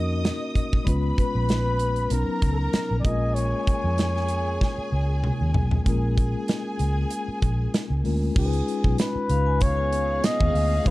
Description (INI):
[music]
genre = lush 1970s-style soul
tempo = 96 BPM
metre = 4/4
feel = swing 54% on 16ths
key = unclear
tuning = A4 = 440 Hz
[part]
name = warm studio string section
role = second line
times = 0.0-10.9 s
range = Cb4 to Eb6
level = -33 LUFS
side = right 1 dB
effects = none
[part]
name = mellow tine electric piano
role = accompaniment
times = 0.0-10.9 s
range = F#3 to Cb5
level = -30 LUFS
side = left 3 dB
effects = medium stereo tremolo
[part]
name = vintage muted fingered electric bass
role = bass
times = 0.0-10.9 s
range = Bb1 to F2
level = -24 LUFS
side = equal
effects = none
[part]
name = modern studio drum kit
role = drums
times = 0.2-10.9 s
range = crash cymbal, hi-hat, kick drum, snare drum, toms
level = -24 LUFS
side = equal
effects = none
[part]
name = breathy flugelhorn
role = melody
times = 1.2-10.9 s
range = Ab4 to Eb5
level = -28 LUFS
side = left 1 dB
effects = none
[part]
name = tambourine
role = percussion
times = 9.0-10.4 s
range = none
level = -41 LUFS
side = right 16 dB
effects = none
[part]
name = vibraphone with medium hard mallets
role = texture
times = 9.3-10.9 s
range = F5 to Cb6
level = -40 LUFS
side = right 4 dB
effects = none
[sound]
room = small room ambience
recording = dark, warm production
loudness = -21 LUFS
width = side -18 dB against mid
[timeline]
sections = 0.0-5.9 A section; 5.9-8.4 B section; 8.4-10.9 C section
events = drum fill 4.6-5.9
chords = 0.0 Ebm7; 0.9 Db7; 2.1 Bmaj9; 3.1 Bbm7; 8.4 Db9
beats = 0.24 | 0.87 1.49 2.12 2.74 | 3.36 3.99 4.61 5.24 | 5.86 6.49 7.11 7.74 | 8.36 8.98 9.61 10.23 | 10.86